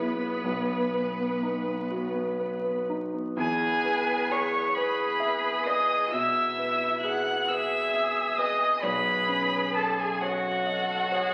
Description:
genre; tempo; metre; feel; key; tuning
classical, slow romantic movement for piano quartet; 41-45 BPM (dotted quarters); 12/8; rubato; E major; A4 = 439 Hz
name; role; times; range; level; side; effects
warm violin; melody; 0.0-11.3 s; B4 to F#6; -30 LUFS; equal; none
clear violin; second line; 0.0-11.3 s; F#4 to F#5; -34 LUFS; equal; none
warm cello; second line; 0.0-11.3 s; B3 to B4; -36 LUFS; equal; none
warm concert grand piano; accompaniment; 0.0-11.3 s; B1 to E5; -33 LUFS; equal; none
room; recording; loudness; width
wet recital hall reverb, RT60 1.4 s; very old 78 rpm record, vinyl crackle; -27 LUFS; mono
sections
0.0-3.4 A section; 3.4-11.3 B section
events
none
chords
0.5 B; 3.4 E; 8.8 B13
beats
0.45 1.92 | 3.38 4.75 6.11 7.50 | 8.84 10.22

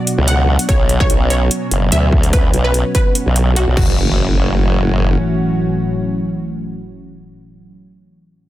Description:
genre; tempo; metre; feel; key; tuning
heavy wobble dubstep; 146 BPM; 4/4; swing 53% on 16ths, half-time; F# minor; A4 = 440 Hz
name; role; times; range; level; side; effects
lush unison pad; sustained chords; 0.0-7.7 s; A2 to F#4; -20 LUFS; equal; chorus, sidechain pumping
dubstep drum kit; drums; 0.1-3.9 s; crash cymbal, hi-hat; -22 LUFS; left 1 dB; studio reverb, soft clipping on snare
formant-sweep wobble bass; bass; 0.2-5.2 s; F#1 to D2; -15 LUFS; equal; chorus, overdrive
wide unison pluck; melody; 0.3-7.7 s; F#4 to F#5; -22 LUFS; equal; dub echo
electronic kick drum; drums; 0.7-3.9 s; none; -14 LUFS; equal; distortion, studio reverb
impact; sound effects; 3.8-7.8 s; none; -23 LUFS; equal; none
room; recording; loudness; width
digital ambience; dense, heavily limited modern master; -13 LUFS; side -14 dB against mid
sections
0.0-4.0 A section; 4.0-7.3 B section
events
none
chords
0.0 Bm; 3.8 F#m7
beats
0.28 | 0.69 1.10 1.51 1.92 | 2.33 2.74 3.15 3.56 | 3.98 4.39 4.80 5.21 | 5.62 6.03 6.44 6.85

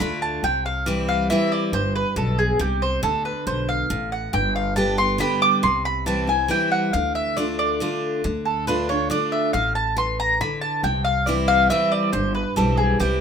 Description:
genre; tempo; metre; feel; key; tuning
bluegrass; 138 BPM; 3/4; straight; D dorian; A4 = 442 Hz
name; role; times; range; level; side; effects
mandolin; melody; 0.0-13.2 s; G4 to D6; -22 LUFS; right 1 dB; none
picked steel-string acoustic guitar; accompaniment; 0.0-13.2 s; G2 to G4; -24 LUFS; equal; none
upright bass; bass; 0.0-13.2 s; G1 to D2; -27 LUFS; left 1 dB; none
room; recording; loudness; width
moderate studio reverb, RT60 0.9 s; minimal, uncompressed stereo recording; -19 LUFS; side -7 dB against mid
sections
0.0-8.2 A section; 8.2-13.2 A section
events
none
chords
0.4 C; 3.0 Dm; 4.3 G; 5.6 C; 6.9 Dm; 10.8 C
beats
0.00 | 0.43 0.87 1.30 | 1.74 2.17 2.60 | 3.04 3.47 3.90 | 4.34 4.77 5.21 | 5.64 6.07 6.50 | 6.94 7.37 7.80 | 8.24 8.67 9.11 | 9.54 9.97 10.41 | 10.84 11.27 11.71 | 12.14 12.57 13.00

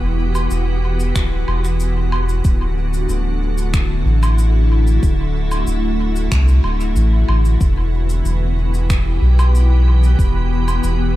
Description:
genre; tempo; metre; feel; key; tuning
ambient dub; 93 BPM; 4/4; straight; E minor; A4 = 440 Hz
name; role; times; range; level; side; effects
soft additive organ-like pad; sustained chords; 0.0-11.2 s; D3 to G4; -22 LUFS; equal; ensemble chorus, built-in reverb
soft dub sub bass; bass; 0.0-11.2 s; D1 to C2; -15 LUFS; equal; none
electronic cabasa, woodblock and finger snaps; drums; 0.4-11.0 s; none; -29 LUFS; right 1 dB; overdrive, dub echo
electronic kick drum; drums; 1.2-10.3 s; none; -18 LUFS; equal; none
bubbling stepped-filter texture; texture; 7.9-11.2 s; B4; -33 LUFS; right 5 dB; chorus, built-in reverb
room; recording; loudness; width
little or no reverb; none; -14 LUFS; side -15 dB against mid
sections
0.0-11.2 A section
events
none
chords
0.0 Em; 2.4 D; 7.6 Em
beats
0.51 1.15 1.80 | 2.44 3.09 3.73 4.38 | 5.02 5.67 6.32 6.96 | 7.61 8.25 8.89 9.54 | 10.19 10.83

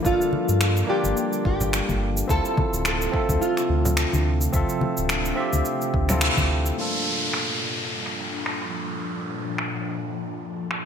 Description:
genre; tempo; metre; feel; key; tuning
sunset chillout; 107 BPM; 4/4; swing 56% on 16ths; G dorian; A4 = 441 Hz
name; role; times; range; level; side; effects
nylon-string guitar; melody; 0.0-6.2 s; F4 to A4; -26 LUFS; equal; ensemble chorus, ping-pong delay
barky tine electric piano; accompaniment; 0.0-10.9 s; G2 to E5; -28 LUFS; right 1 dB; overdrive, auto-pan, ping-pong delay
ethereal airy pad; sustained chords; 0.0-10.9 s; Bb2 to A4; -31 LUFS; left 1 dB; ensemble chorus, built-in reverb, phaser
round analog bass; bass; 0.0-6.7 s; D1 to G2; -24 LUFS; equal; none
electronic kick drum; drums; 0.0-6.5 s; none; -27 LUFS; equal; none
electronic cabasa and finger snaps; drums; 0.1-10.8 s; none; -28 LUFS; equal; low-pass filter on perc, low-pass filter on snare, low-pass filter on room, gated reverb
congas; percussion; 0.3-6.5 s; none; -29 LUFS; left 3 dB; none
downlifter; sound effects; 6.8-10.9 s; none; -29 LUFS; equal; none
room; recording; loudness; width
moderate lush hall reverb, RT60 1.7 s; bright 1980s-style digital production; -21 LUFS; side -8 dB against mid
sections
0.0-6.8 A section; 6.8-10.9 B section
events
band accent 6.2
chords
0.0 Gm7; 2.3 Dm7; 6.8 Gm7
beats
| 0.05 0.61 1.17 1.73 | 2.29 2.85 3.42 3.98 | 4.54 5.10 5.66 6.22 | 6.78 7.34 7.90 8.46 | 9.02 9.58 10.14 10.71

